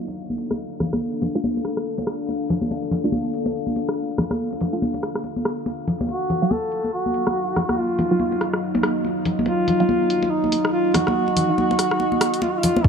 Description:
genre	deep dubstep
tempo	142 BPM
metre	4/4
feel	swing 59% on 16ths, half-time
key	unclear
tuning	A4 = 440 Hz
part	deep dark ambient pad	sustained chords	0.0-12.9 s	Gb3 to F5	-26 LUFS	equal	chorus, built-in reverb
part	filtered dub chord stab	stabs	0.0-12.8 s	Gb3 to F5	-27 LUFS	right 4 dB	none
part	congas	percussion	0.1-12.8 s	none	-25 LUFS	equal	dub echo
part	deep house drum kit	drums	0.4-12.7 s	hi-hat, rim click	-26 LUFS	equal	high-pass filter on cymbals, high-pass filter on hats, high-pass filter on snare
part	mellow duduk	melody	6.1-12.9 s	Eb4 to A4	-22 LUFS	equal	low-pass filter, dub echo
part	wobble bass	bass	12.8-12.9 s	D2	-24 LUFS	equal	chorus
part	electronic kick drum	drums	12.8-12.9 s	none	-12 LUFS	equal	none
room	light reverb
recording	vinyl crackle, low-pass filter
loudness	-20 LUFS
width	side -6 dB against mid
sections	0.0-12.8 A section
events	filter sweep 0.0-12.8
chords	0.0 Dm; 6.1 Ebmadd9

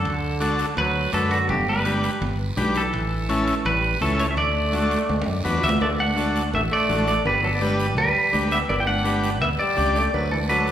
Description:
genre	latin, cumbia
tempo	167 BPM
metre	4/4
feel	straight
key	D major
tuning	A4 = 440 Hz
part	clean electric guitar	melody	0.0-10.7 s	F#4 to G5	-23 LUFS	equal	spring reverb
part	bright trombone	second line	0.0-10.7 s	D3 to E4	-30 LUFS	right 3 dB	none
part	fingered electric bass	bass	0.0-10.7 s	G1 to F#2	-26 LUFS	equal	none
part	congas	percussion	0.1-10.7 s	none	-31 LUFS	equal	none
part	guiro	percussion	0.1-10.7 s	none	-38 LUFS	right 3 dB	none
part	timbales and cowbell	percussion	0.1-10.3 s	none	-34 LUFS	right 2 dB	none
part	combo organ	accompaniment	0.4-10.7 s	C#4 to D5	-27 LUFS	left 2 dB	none
room	wet recital hall reverb, RT60 1.5 s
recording	recorded in a church or concert hall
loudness	-19 LUFS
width	side -10 dB against mid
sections	0.0-5.8 A section; 5.8-10.7 B section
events	drum fill 5.1-5.8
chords	0.0 D; 1.5 G; 2.9 A7; 4.4 D; 7.3 G; 10.1 D

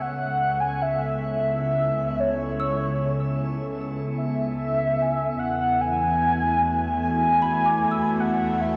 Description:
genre	ambient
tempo	76 BPM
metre	4/4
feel	straight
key	unclear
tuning	A4 = 439 Hz
part	warm velvety synth lead	melody	0.0-8.8 s	C#5 to G#5	-26 LUFS	equal	chorus, shimmer reverb, delay
part	warbly tape-like pad	sustained chords	0.0-8.8 s	C#3 to D5	-30 LUFS	equal	chorus, built-in reverb
part	small celesta	arpeggios	0.0-8.8 s	G#5 to E6	-37 LUFS	equal	shimmer reverb, delay
part	muted studio cello section	bass	0.0-8.8 s	C#2 to E2	-36 LUFS	equal	none
part	glass harmonica	texture	0.0-8.8 s	E4 to G#5	-41 LUFS	equal	shimmer reverb
part	bowed-like drone	drone	6.9-8.8 s	A3	-33 LUFS	equal	built-in reverb
room	wet concert hall reverb, RT60 2.2 s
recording	dark, warm production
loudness	-24 LUFS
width	mono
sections	0.0-8.8 A section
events	fade-in on ambient pad 0.0-8.8; fade-in on celesta 0.0-8.8; fade-in on cello section 0.0-8.8; fade-in on glass harmonica 0.0-8.8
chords	0.0 C#m7; 5.4 E7

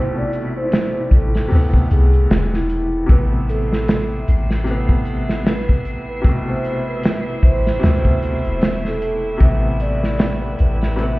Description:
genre	trip hop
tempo	76 BPM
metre	4/4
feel	swing 57% on 16ths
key	A minor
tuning	A4 = 436 Hz
part	pure breathy sine lead	melody	0.0-11.2 s	E4 to E5	-25 LUFS	right 1 dB	wide subtle chorus, dub echo
part	bright upright piano	accompaniment	0.0-11.2 s	B2 to B3	-24 LUFS	left 1 dB	tremolo
part	soft 808-style bass	bass	0.0-11.2 s	E1 to D2	-18 LUFS	equal	none
part	flickering grainy texture	texture	0.0-11.2 s	E4 to C7	-34 LUFS	equal	built-in reverb
part	egg shaker and triangle	percussion	0.2-11.2 s	none	-52 LUFS	right 2 dB	none
part	modern studio drum kit	drums	0.3-11.2 s	hi-hat, kick drum, snare drum	-18 LUFS	equal	none
part	dark studio violin section	sustained chords	3.1-11.2 s	E4 to E5	-31 LUFS	right 1 dB	none
room	studio reverb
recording	heard muffled through a wall, stone room reverb, EQ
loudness	-15 LUFS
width	side -20 dB against mid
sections	0.0-11.2 A section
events	none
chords	0.0 Amadd9

